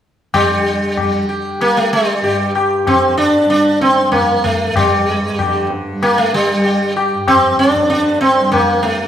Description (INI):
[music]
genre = indian classical, Hindustani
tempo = 95 BPM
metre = 7/4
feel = straight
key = G raga bhimpalasi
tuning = A4 = 441 Hz
[part]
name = sitar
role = melody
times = 0.3-9.1 s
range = G3 to G4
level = -13 LUFS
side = equal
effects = none
[part]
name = tanpura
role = drone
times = 0.3-9.1 s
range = G2 to G3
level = -24 LUFS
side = right 1 dB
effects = none
[part]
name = tabla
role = percussion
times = 0.3-9.1 s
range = none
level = -19 LUFS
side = left 4 dB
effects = none
[sound]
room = wet recital hall reverb, RT60 1.2 s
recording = recorded in a church or concert hall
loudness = -12 LUFS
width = side -10 dB against mid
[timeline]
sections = 0.3-9.1 A section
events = none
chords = none